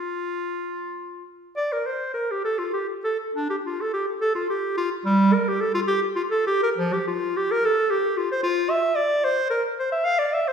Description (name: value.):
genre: classical, baroque-style fantasia for unaccompanied clarinet.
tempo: 64-76 BPM (dotted quarters).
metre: 6/8.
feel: rubato.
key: unclear.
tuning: A4 = 440 Hz.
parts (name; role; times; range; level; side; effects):
clear clarinet; solo; 0.0-10.5 s; F3 to F5; -21 LUFS; equal; none.
room: wet recital hall reverb, RT60 1.5 s.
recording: heard from further back in the room.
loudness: -21 LUFS.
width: side -7 dB against mid.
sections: 0.0-1.6 A section; 1.6-10.5 B section.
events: none.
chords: none.